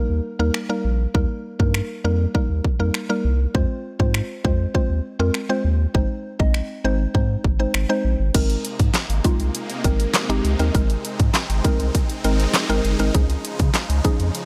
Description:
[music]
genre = dance-pop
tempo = 100 BPM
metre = 4/4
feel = straight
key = Ab major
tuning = A4 = 440 Hz
[part]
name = mallet-like synth pluck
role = accompaniment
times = 0.0-14.4 s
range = F3 to Eb5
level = -27 LUFS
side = equal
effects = chorus, sidechain pumping
[part]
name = round analog bass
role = bass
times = 0.1-14.3 s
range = G1 to Db3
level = -23 LUFS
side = equal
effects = sidechain pumping
[part]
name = pop drum kit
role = drums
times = 0.5-14.5 s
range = crash cymbal, finger snaps, handclaps, hi-hat, kick drum, snare drum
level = -23 LUFS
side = equal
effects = none
[part]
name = supersaw chords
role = sustained chords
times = 8.3-14.5 s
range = C3 to Eb4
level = -32 LUFS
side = equal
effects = phaser, sidechain pumping
[sound]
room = little or no reverb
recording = none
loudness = -21 LUFS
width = mono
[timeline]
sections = 0.0-8.3 A section; 8.3-14.5 B section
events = none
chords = 0.0 Eb; 3.5 Fm; 5.9 Ab; 8.3 Abadd9; 13.1 Dbadd9

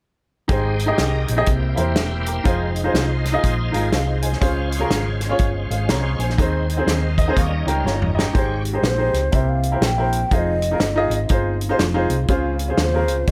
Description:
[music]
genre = uptempo gospel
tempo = 122 BPM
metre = 4/4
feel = swing 62% on 8ths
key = Ab major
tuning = A4 = 440 Hz
[part]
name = warm upright piano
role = accompaniment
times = 0.5-13.3 s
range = Ab2 to Bb5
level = -25 LUFS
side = equal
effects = none
[part]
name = bright tonewheel organ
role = sustained chords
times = 0.5-8.6 s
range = Gb3 to G5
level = -31 LUFS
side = equal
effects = slow rotary speaker, chorus vibrato
[part]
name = hollow-body short-scale fingered electric bass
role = bass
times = 0.5-13.3 s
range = E1 to E2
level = -25 LUFS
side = equal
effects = none
[part]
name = natural country drum kit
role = drums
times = 0.5-13.3 s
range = hi-hat, kick drum, snare drum, toms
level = -24 LUFS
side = equal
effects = none
[part]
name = mellow French horn section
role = sustained chords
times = 8.3-13.3 s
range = E3 to G4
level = -34 LUFS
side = equal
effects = none
[part]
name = breathy mellow shakuhachi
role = melody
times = 8.8-13.3 s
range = C5 to G5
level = -26 LUFS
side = equal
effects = none
[sound]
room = little or no reverb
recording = none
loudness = -20 LUFS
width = mono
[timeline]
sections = 0.5-8.3 A section; 8.3-13.3 B section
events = upright piano fill 3.7-4.4, 6.9-8.3; drum fill 7.9-8.3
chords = 0.5 Abmaj7; 1.5 C7; 2.5 Fm7; 4.4 Dbmaj7; 6.4 Ab/Eb; 7.4 Eb7; 8.3 Abmaj7; 9.3 C7; 10.3 Fm7; 12.3 Dbmaj7

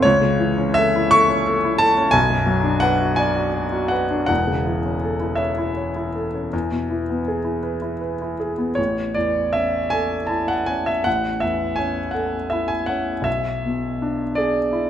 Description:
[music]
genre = classical, romantic nocturne for solo piano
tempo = 54 BPM (dotted quarters)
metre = 12/8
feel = uneven beats, rubato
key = A major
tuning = A4 = 442 Hz
[part]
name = clear grand piano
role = solo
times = 0.0-14.9 s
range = E1 to C#6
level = -18 LUFS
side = equal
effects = none
[sound]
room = moderate recital hall reverb, RT60 1.3 s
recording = none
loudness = -18 LUFS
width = side -10 dB against mid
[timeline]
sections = 0.0-8.8 A section; 8.8-14.9 B section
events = none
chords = 0.0 A/C#; 2.1 Bm; 4.3 A/E; 6.5 E; 8.8 A; 13.3 E7/B

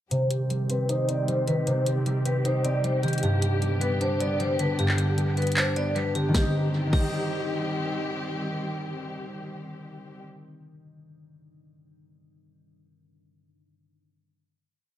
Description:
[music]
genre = hip hop, trap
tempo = 154 BPM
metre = 4/4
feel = half-time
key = C harmonic minor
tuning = A4 = 440 Hz
[part]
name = vibraphone with hard mallets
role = melody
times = 0.1-7.5 s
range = G4 to D5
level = -30 LUFS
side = equal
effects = low-pass filter, dub echo
[part]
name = concert harp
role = accompaniment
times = 0.1-11.0 s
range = G2 to Eb4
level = -26 LUFS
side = equal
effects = low-pass filter, dub echo
[part]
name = warm symphonic string section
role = sustained chords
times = 0.1-10.2 s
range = D3 to G4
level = -34 LUFS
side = left 1 dB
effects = low-pass filter
[part]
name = trap drum kit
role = drums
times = 0.1-7.0 s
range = crash cymbal, handclaps, hi-hat, kick drum, snare drum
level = -29 LUFS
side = equal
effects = dub echo
[sound]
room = light reverb, small room ambience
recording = echo-heavy mix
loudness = -23 LUFS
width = side -12 dB against mid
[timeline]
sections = 0.1-6.3 breakdown; 6.3-9.5 final chord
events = filter sweep 0.1-6.3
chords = 0.1 Cm; 3.2 G; 6.3 Cm

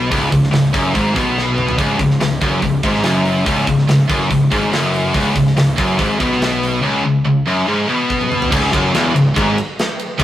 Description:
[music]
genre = heavy metal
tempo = 143 BPM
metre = 4/4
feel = straight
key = C# minor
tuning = A4 = 439 Hz
[part]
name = scooped high-gain guitar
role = riff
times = 0.0-10.2 s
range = C#2 to B2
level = -21 LUFS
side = right 5 dB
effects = distortion
[part]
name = tight distorted guitar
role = riff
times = 0.0-10.2 s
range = C#2 to B2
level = -15 LUFS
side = left 2 dB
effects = distortion
[part]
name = fuzz picked electric bass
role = bass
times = 0.0-10.2 s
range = C#1 to B1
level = -23 LUFS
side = right 1 dB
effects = overdrive
[part]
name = tight metal drum kit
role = drums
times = 0.1-10.2 s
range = crash cymbal, hi-hat, kick drum, ride cymbal, snare drum, toms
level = -21 LUFS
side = right 1 dB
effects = none
[part]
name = distorted electric guitar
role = riff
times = 8.5-10.2 s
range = C#2 to G#2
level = -25 LUFS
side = right 1 dB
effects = none
[sound]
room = moderate stone room reverb, RT60 1.2 s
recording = rough rehearsal-room recording, warm saturation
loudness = -13 LUFS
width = side -12 dB against mid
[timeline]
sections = 0.0-8.5 A section; 8.5-10.2 B section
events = drum fill 1.4-1.8, 8.1-8.5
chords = 0.0 C#5; 8.5 C#m

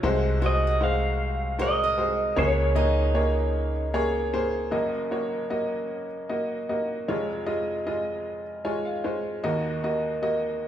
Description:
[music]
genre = acoustic folk-pop ballad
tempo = 51 BPM (dotted quarters)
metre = 6/8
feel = straight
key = unclear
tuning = A4 = 440 Hz
[part]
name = bright upright piano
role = accompaniment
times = 0.0-10.7 s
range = F1 to Ab5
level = -26 LUFS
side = equal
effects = none
[part]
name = upright bass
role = bass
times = 0.0-4.7 s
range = C2 to Db2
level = -26 LUFS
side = equal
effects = none
[part]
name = picked swing-style acoustic guitar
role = arpeggios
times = 0.4-3.9 s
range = Eb4 to Eb5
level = -34 LUFS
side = right 3 dB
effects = none
[part]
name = electric guitar through a small old amp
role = melody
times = 0.5-3.9 s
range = Db5 to F5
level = -26 LUFS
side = right 1 dB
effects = tremolo
[sound]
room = wet large studio reverb, RT60 0.9 s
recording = band playing live in one room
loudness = -24 LUFS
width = side -10 dB against mid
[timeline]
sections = 0.0-4.7 A section; 4.7-10.7 B section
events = none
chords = 0.0 Ab7/C; 2.4 Bbm7/Db; 4.7 Gb6; 7.1 Db/F; 9.4 Ebm

